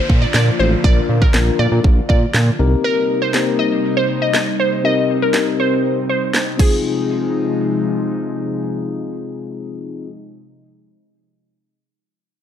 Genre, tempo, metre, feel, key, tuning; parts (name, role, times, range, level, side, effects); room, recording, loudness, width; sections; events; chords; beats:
dance-pop; 120 BPM; 4/4; straight; F dorian; A4 = 440 Hz
glassy wavetable pluck; melody; 0.0-8.3 s; Ab4 to Eb5; -20 LUFS; equal; chorus, sidechain pumping, low-pass filter, ping-pong delay
airy breathy pad; sustained chords; 0.0-10.1 s; C3 to F4; -22 LUFS; equal; chorus, sidechain pumping, low-pass filter
downlifter; sound effects; 0.0-2.8 s; -31 LUFS; right 1 dB
fat analog bass; bass; 0.1-2.8 s; A1 to Bb2; -16 LUFS; right 1 dB; sidechain pumping
house drum kit; drums; 0.1-6.7 s; crash cymbal, handclaps, kick drum, snare drum; -16 LUFS; equal
mellow tine electric piano; accompaniment; 0.8-10.1 s; Bb3 to Bb4; -22 LUFS; left 7 dB; sidechain pumping, low-pass filter
light reverb, digital ambience; dark, warm production; -14 LUFS; side -9 dB against mid
0.0-6.8 A section; 6.8-10.8 B section
filter sweep 0.0-6.8
0.0 Bb; 2.6 Cm7; 6.6 Fm7
0.34 | 0.84 1.34 1.84 2.34 | 2.84 3.34 3.84 4.34 | 4.84 5.34 5.84 6.34 | 6.84 7.34 7.84 8.34 | 8.84 9.34 9.84